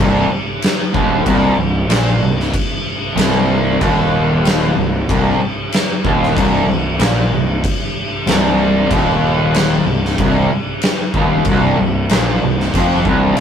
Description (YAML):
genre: stoner and doom metal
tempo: 94 BPM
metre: 4/4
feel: straight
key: C minor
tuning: A4 = 439 Hz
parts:
  - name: fuzz guitar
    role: riff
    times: 0.0-13.4 s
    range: C2 to Bb2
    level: -15 LUFS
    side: equal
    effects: distortion
  - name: fuzz fingered electric bass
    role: bass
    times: 0.0-13.4 s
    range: C1 to Bb1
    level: -19 LUFS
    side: equal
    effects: overdrive
  - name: oversized low-tuned drum kit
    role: drums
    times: 0.6-13.4 s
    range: crash cymbal, kick drum, snare drum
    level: -18 LUFS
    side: equal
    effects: none
room: moderate stone room reverb, RT60 1.0 s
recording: rough rehearsal-room recording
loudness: -13 LUFS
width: side -8 dB against mid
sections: 0.0-13.4 A section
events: none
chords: 0.0 Cm